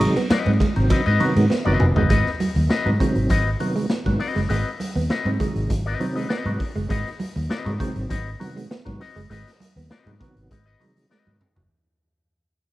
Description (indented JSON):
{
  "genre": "funk",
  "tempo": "100 BPM",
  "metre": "4/4",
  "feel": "straight",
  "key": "Ab mixolydian",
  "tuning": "A4 = 440 Hz",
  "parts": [
    { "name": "mellow electric guitar", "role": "riff", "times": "0.0-11.7 s", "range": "Gb3 to C4", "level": "-28 LUFS", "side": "right 4 dB", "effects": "none" },
    { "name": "percussive tonewheel organ", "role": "stabs", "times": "0.0-11.6 s", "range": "C3 to C4", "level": "-25 LUFS", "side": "right 1 dB", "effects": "chorus vibrato, slow rotary speaker, slapback echo" },
    { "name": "vintage muted fingered electric bass", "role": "bass", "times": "0.0-11.7 s", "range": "F1 to Ab2", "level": "-22 LUFS", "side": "equal", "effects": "none" },
    { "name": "raw garage drum kit", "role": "drums", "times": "0.0-11.7 s", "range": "hi-hat, kick drum, ride cymbal, snare drum, toms", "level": "-25 LUFS", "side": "equal", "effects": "none" },
    { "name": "congas", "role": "percussion", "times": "0.0-11.6 s", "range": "none", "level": "-31 LUFS", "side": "right 3 dB", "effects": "none" },
    { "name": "electric guitar with an envelope filter", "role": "accompaniment", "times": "0.3-11.3 s", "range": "C4 to Eb5", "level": "-28 LUFS", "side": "left 5 dB", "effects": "spring reverb" }
  ],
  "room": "small room ambience",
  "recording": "vinyl crackle",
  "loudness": "-19 LUFS",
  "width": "side -17 dB against mid",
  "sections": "0.0-2.1 A section; 2.1-11.7 B section",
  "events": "drum fill 1.5-2.1, 11.1-11.7; fade-out 2.1-11.7",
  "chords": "0.0 Ab7#9"
}